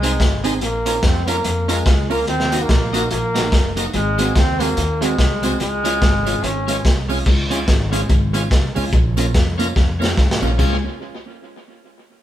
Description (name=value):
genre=ska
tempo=144 BPM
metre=4/4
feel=swing 60% on 8ths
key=Db major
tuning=A4 = 436 Hz
part: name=bright trombone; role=melody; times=0.0-6.8 s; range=Ab3 to Db4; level=-22 LUFS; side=equal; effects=none
part: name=hollow-body jazz guitar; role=accompaniment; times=0.0-10.7 s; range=Ab3 to Bb4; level=-25 LUFS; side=right 4 dB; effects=tape echo
part: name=bright tonewheel organ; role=stabs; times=0.0-10.8 s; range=C4 to C5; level=-28 LUFS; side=left 3 dB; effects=overdrive, slow rotary speaker
part: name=upright bass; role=bass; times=0.0-10.8 s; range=Gb1 to F2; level=-22 LUFS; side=equal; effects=none
part: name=crunchy breakbeat drum kit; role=drums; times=0.0-10.7 s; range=crash cymbal, hi-hat, kick drum, snare drum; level=-18 LUFS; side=equal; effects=tape echo
part: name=tambourine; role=percussion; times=0.0-10.8 s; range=none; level=-37 LUFS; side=right 3 dB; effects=none
room=moderate stone room reverb, RT60 1.2 s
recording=band playing live in one room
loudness=-15 LUFS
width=side -12 dB against mid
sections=0.0-7.3 A section; 7.3-10.6 B section; 10.6-12.2 C section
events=drum fill 9.8-10.6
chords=0.0 Ab; 0.6 Bbm; 2.3 Ebm; 3.9 Ab7; 5.6 Db; 8.9 Bbm; 10.6 Db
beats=0.20 | 0.61 1.03 1.45 1.86 | 2.28 2.69 3.11 3.52 | 3.94 4.35 4.77 5.18 | 5.60 6.01 6.43 6.85 | 7.26 7.68 8.09 8.51 | 8.92 9.34 9.76 10.17 | 10.59